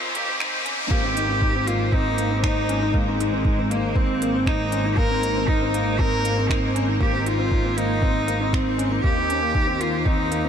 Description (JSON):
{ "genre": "piano and strings electronica", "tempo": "118 BPM", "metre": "4/4", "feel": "straight", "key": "Ab major", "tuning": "A4 = 440 Hz", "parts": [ { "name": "rich cello", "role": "melody", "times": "0.0-10.5 s", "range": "Ab3 to Bb4", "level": "-24 LUFS", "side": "right 1 dB", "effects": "ping-pong delay" }, { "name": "granular cloud pad", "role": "sustained chords", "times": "0.0-10.5 s", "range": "Bb3 to C5", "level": "-29 LUFS", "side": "equal", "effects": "built-in reverb, wide subtle chorus" }, { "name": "felt-muted upright piano", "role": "riff", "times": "0.0-10.5 s", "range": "Bb3 to Eb4", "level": "-28 LUFS", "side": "left 4 dB", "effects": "ping-pong delay" }, { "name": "warm studio double bass section", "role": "bass", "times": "0.0-10.5 s", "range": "Ab1 to F2", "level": "-27 LUFS", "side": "equal", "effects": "sidechain pumping" }, { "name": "riser", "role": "sound effects", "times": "0.0-0.9 s", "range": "none", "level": "-34 LUFS", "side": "left 3 dB", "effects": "none" }, { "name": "organic electronic drum kit", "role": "drums", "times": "0.2-10.4 s", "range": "finger snaps, hi-hat", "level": "-35 LUFS", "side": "right 2 dB", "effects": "none" }, { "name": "electronic kick drum", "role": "drums", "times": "0.9-10.2 s", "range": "none", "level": "-23 LUFS", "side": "equal", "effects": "overdrive, studio reverb" } ], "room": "moderate huge ambient reverb, RT60 9.1 s", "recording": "dreamy mix soaked in reverb, high-pass filter", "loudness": "-19 LUFS", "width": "side -8 dB against mid", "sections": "0.9-10.5 A section", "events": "riser 0.0-0.9; drop 0.9-10.5", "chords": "0.0 F5; 0.9 Ab; 9.0 Eb5", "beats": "0.40 | 0.91 1.42 1.93 2.44 | 2.94 3.45 3.96 4.47 | 4.98 5.49 5.99 6.50 | 7.01 7.52 8.03 8.54 | 9.04 9.55 10.06" }